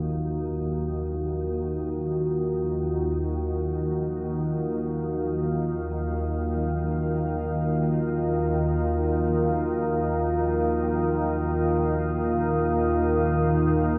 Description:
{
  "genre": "dark ambient drone",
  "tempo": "free time",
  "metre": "none",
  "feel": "none",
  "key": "Eb minor",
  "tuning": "A4 = 440 Hz",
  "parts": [
    { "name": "deep dark ambient pad", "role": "sustained chords", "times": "0.0-14.0 s", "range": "Bb3 to F5", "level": "-29 LUFS", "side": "equal", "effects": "chorus, built-in reverb" },
    { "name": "organ-like drone", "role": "drone", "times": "0.0-14.0 s", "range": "Eb2 to Eb3", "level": "-28 LUFS", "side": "equal", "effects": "ensemble chorus, built-in reverb" },
    { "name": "quartz singing bowl", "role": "texture", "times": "0.0-14.0 s", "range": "F5", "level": "-54 LUFS", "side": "equal", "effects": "none" }
  ],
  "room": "wet cathedral reverb, RT60 6.8 s",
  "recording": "none",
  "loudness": "-26 LUFS",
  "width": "mono",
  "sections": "0.0-14.0 A section",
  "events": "fade-in on synth drone 0.0-14.0; fade-in on ambient pad 0.0-14.0",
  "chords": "0.0 Ebmadd9; 10.7 Bbsus4/Eb"
}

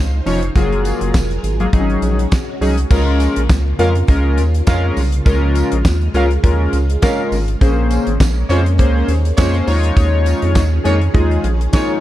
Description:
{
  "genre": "early-eighties boogie funk",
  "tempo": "102 BPM",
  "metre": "4/4",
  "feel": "swing 56% on 16ths",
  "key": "Bb minor",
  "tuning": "A4 = 443 Hz",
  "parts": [
    { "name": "string machine, full ensemble", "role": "sustained chords", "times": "0.0-12.0 s", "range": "Db3 to F5", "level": "-26 LUFS", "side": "right 1 dB", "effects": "phaser, ensemble chorus" },
    { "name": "rubbery square bass", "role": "bass", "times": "0.0-11.7 s", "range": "F1 to F2", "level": "-16 LUFS", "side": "equal", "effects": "none" },
    { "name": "chorused polysynth", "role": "accompaniment", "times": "0.3-12.0 s", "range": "F3 to Db5", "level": "-19 LUFS", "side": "left 2 dB", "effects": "none" },
    { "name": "damped 70s drum kit", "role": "drums", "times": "0.3-11.9 s", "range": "crash cymbal, handclaps, hi-hat, kick drum, snare drum", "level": "-16 LUFS", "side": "equal", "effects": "none" },
    { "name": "tambourine", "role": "percussion", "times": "0.3-11.9 s", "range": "none", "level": "-38 LUFS", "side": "right 6 dB", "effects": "none" },
    { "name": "warm horn section", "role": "second line", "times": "3.8-11.9 s", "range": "Ab3 to F5", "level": "-24 LUFS", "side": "right 4 dB", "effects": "none" }
  ],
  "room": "small room ambience",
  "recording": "dark, warm production",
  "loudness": "-13 LUFS",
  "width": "side -14 dB against mid",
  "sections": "0.0-2.9 A section; 2.9-12.0 B section",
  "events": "none",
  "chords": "0.0 Dbmaj9; 0.6 Gbmaj9; 1.7 Ab7sus4; 2.9 Bbm9; 9.7 Eb9sus4"
}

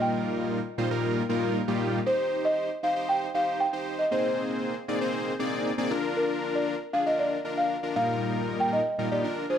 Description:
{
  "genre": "pop",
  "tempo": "117 BPM",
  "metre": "4/4",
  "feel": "straight",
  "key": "unclear",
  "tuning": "A4 = 440 Hz",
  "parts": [
    { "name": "buzzing marimba with soft mallets", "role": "melody", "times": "0.0-9.6 s", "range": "Bb4 to G5", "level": "-27 LUFS", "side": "equal", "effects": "tape echo" },
    { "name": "big bright polysynth", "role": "accompaniment", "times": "0.0-9.6 s", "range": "Bb2 to D5", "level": "-28 LUFS", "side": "left 1 dB", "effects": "none" }
  ],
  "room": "moderate plate reverb, RT60 2.5 s",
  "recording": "none",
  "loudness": "-25 LUFS",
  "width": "side -9 dB against mid",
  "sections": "0.0-9.6 A section",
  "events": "none",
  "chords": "0.0 Ebadd9/Bb; 2.1 Cm; 4.1 Abadd9; 5.9 Bb; 8.0 Ebadd9/Bb"
}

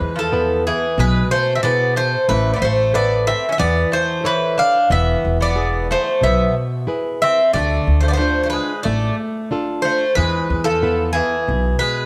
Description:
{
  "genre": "greek folk, Greek bouzouki band",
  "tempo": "91 BPM",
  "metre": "4/4",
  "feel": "straight",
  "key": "unclear",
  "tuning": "A4 = 440 Hz",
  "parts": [
    { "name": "Greek bouzouki", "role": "melody", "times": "0.0-12.1 s", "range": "G#4 to F5", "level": "-21 LUFS", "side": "equal", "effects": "none" },
    { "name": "Greek bouzouki", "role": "second line", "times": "0.0-12.1 s", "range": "E3 to D4", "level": "-26 LUFS", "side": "equal", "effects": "none" },
    { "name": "flamenco guitar", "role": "accompaniment", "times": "0.0-12.1 s", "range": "B2 to E5", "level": "-26 LUFS", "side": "equal", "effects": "none" },
    { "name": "upright bass", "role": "bass", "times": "0.0-11.7 s", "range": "E1 to E2", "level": "-22 LUFS", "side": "equal", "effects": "none" }
  ],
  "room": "wet plate reverb, RT60 2.5 s",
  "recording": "heard from further back in the room",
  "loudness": "-18 LUFS",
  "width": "mono",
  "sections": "0.0-12.1 A section",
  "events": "none",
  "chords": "0.0 E; 2.3 Aadd9; 4.9 E; 7.5 Dm; 10.2 E"
}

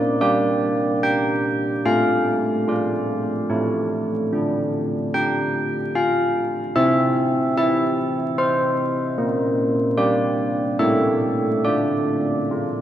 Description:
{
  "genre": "classical, tune for church bells",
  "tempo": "73 BPM",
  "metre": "3/4",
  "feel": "straight",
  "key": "D minor",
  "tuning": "A4 = 438 Hz",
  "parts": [
    { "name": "carillon bells", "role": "solo", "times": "0.0-12.8 s", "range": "A3 to G5", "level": "-18 LUFS", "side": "equal", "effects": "none" }
  ],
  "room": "wet cathedral reverb, RT60 5.0 s",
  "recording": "dark, warm production, vinyl crackle",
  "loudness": "-18 LUFS",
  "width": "side -11 dB against mid",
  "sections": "0.0-12.8 A section",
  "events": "none",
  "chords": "0.0 Gm/Bb; 1.9 Dm/A; 3.5 A; 4.3 N.C.; 6.8 C; 9.2 Gm/Bb; 10.8 A7; 11.6 Dm"
}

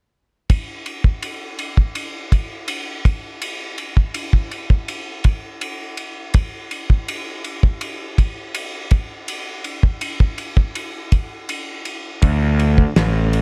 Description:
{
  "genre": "psychedelic rock",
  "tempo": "82 BPM",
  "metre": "4/4",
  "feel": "straight",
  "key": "unclear",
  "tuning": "A4 = 440 Hz",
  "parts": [
    { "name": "damped 70s drum kit", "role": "drums", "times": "0.5-13.4 s", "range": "kick drum, ride cymbal, snare drum", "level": "-22 LUFS", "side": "equal", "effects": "none" },
    { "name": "fuzz picked electric bass", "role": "bass", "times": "12.2-13.4 s", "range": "A1 to D2", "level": "-18 LUFS", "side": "equal", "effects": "overdrive" }
  ],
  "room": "little or no reverb",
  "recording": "none",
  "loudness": "-21 LUFS",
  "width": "mono",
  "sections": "0.5-13.4 A section",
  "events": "none",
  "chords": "none"
}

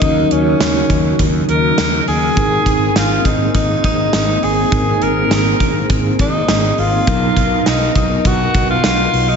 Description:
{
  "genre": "1980s-style pop",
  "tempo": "102 BPM",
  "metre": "4/4",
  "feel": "straight",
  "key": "unclear",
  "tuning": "A4 = 440 Hz",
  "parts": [
    { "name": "clear tenor saxophone", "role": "melody", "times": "0.0-9.4 s", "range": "C#4 to A#4", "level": "-18 LUFS", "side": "left 1 dB", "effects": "ping-pong delay" },
    { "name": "mellow tine electric piano", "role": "accompaniment", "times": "0.0-9.4 s", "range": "G#2 to A#4", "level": "-20 LUFS", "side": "right 1 dB", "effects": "medium stereo tremolo" },
    { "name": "ensemble organ-string", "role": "sustained chords", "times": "0.0-9.4 s", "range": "A#2 to A#4", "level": "-21 LUFS", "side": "equal", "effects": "ensemble chorus" },
    { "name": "fretless electric bass", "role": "bass", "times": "0.0-9.3 s", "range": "G#1 to D#2", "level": "-20 LUFS", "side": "equal", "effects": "none" },
    { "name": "gated 80s drum kit", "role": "drums", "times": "0.0-9.3 s", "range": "hi-hat, kick drum, snare drum", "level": "-18 LUFS", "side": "equal", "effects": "none" }
  ],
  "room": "wet lush hall reverb, RT60 2.5 s",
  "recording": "dreamy mix soaked in reverb, nothing above 7.8 kHz",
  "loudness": "-12 LUFS",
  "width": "side -6 dB against mid",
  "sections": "0.0-9.4 A section",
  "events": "none",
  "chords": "0.0 D#m7; 2.4 G#add9; 7.1 Bmaj7"
}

